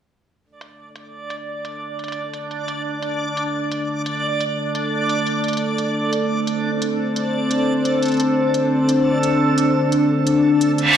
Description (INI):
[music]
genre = half-time drum and bass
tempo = 174 BPM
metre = 4/4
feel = half-time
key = unclear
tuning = A4 = 440 Hz
[part]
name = dark analog pad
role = sustained chords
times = 1.4-11.0 s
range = D4 to D5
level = -19 LUFS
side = left 1 dB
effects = chorus
[part]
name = backwards swelling texture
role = texture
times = 1.2-11.0 s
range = D4 to D5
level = -24 LUFS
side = right 2 dB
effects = built-in reverb
[part]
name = electronic hi-hat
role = drums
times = 0.6-10.9 s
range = none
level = -30 LUFS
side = equal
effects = low-pass filter on hats, low-pass filter on room
[part]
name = reverse cymbal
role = sound effects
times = 10.8-11.0 s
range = none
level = -12 LUFS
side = right 3 dB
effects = none
[sound]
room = light reverb, digital ambience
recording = played on a big sound system in a bare room, large studio reverb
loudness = -18 LUFS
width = side -9 dB against mid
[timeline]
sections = 0.4-11.0 A section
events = reverse cymbal 10.8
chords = 0.4 D5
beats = | 0.44 0.78 1.13 1.47 | 1.82 2.16 2.51 2.85 | 3.20 3.54 3.89 4.23 | 4.58 4.92 5.27 5.61 | 5.96 6.30 6.65 6.99 | 7.34 7.68 8.03 8.37 | 8.71 9.06 9.40 9.75 | 10.09 10.44 10.78